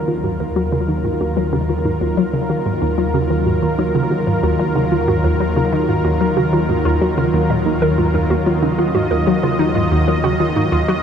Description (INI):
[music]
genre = ambient, sequencer-driven space music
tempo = 93 BPM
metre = 4/4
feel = straight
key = Eb minor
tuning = A4 = 441 Hz
[part]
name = lush unison pad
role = sustained chords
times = 0.0-11.0 s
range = Eb2 to Eb5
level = -18 LUFS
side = equal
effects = chorus
[part]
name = warbly dusty pluck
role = arpeggios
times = 0.0-11.0 s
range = Eb4 to Eb5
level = -22 LUFS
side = moving between left 2 dB and right 4 dB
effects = chorus, auto-pan, tape echo
[part]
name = hollow square pluck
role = riff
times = 0.1-11.0 s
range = Eb2 to Gb3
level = -20 LUFS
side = equal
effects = chorus, phaser, tape echo
[sound]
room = moderate huge ambient reverb, RT60 7.6 s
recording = dreamy mix soaked in reverb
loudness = -15 LUFS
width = side -8 dB against mid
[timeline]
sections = 0.0-11.0 A section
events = none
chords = 0.0 Ebmadd9